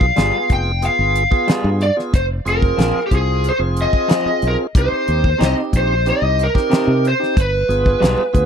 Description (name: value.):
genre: straight-eighth soul blues.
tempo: 92 BPM.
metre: 4/4.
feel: straight.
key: C minor.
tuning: A4 = 442 Hz.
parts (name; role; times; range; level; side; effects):
lead guitar through a small cranked amp; melody; 0.0-8.5 s; G4 to G5; -18 LUFS; equal; overdrive.
tonewheel organ; accompaniment; 0.0-8.5 s; B3 to Ab4; -24 LUFS; right 3 dB; overdrive, slow rotary speaker.
modern bright fingered electric bass; bass; 0.0-8.5 s; F1 to C3; -19 LUFS; equal; none.
damped 70s drum kit; drums; 0.0-8.5 s; hi-hat, kick drum, snare drum; -16 LUFS; equal; none.
electric guitar through a small old amp; stabs; 0.2-8.2 s; C3 to Ab4; -22 LUFS; left 3 dB; none.
room: little or no reverb.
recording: dry, close 1970s-style studio recording.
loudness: -14 LUFS.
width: side -8 dB against mid.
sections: 0.0-8.5 A section.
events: none.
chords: 0.0 G7b9; 2.1 Fm; 4.7 Cm; 7.4 G7b9.